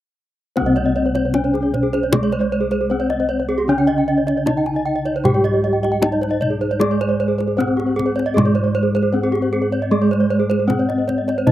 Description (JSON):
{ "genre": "Balinese gamelan", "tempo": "77 BPM", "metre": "4/4", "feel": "straight", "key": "unclear", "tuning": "A4 = 439 Hz", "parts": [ { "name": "gamelan-type bronze metallophone", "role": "melody", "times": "0.6-11.5 s", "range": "Ab3 to G4", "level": "-19 LUFS", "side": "equal", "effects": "none" }, { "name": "gamelan-type bronze metallophone", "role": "accompaniment", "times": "0.6-11.5 s", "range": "C3 to Ab3", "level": "-29 LUFS", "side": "equal", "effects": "none" }, { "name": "gamelan-type bronze metallophone", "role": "arpeggios", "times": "0.6-11.5 s", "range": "G4 to Ab5", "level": "-24 LUFS", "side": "left 5 dB", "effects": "slapback echo" }, { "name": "gamelan-type bossed gongs", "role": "bass", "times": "0.6-11.5 s", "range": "C2 to Ab4", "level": "-25 LUFS", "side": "left 1 dB", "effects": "none" }, { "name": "kendang", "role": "percussion", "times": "0.6-11.5 s", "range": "none", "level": "-22 LUFS", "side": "left 1 dB", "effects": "none" }, { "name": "gamelan-type bronze metallophone", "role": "arpeggios", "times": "0.7-11.5 s", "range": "G4 to G5", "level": "-23 LUFS", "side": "right 4 dB", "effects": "slapback echo" } ], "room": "little or no reverb", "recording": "recorded outdoors, with no room sound", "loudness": "-16 LUFS", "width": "side -13 dB against mid", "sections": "0.6-11.5 A section", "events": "none", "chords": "none" }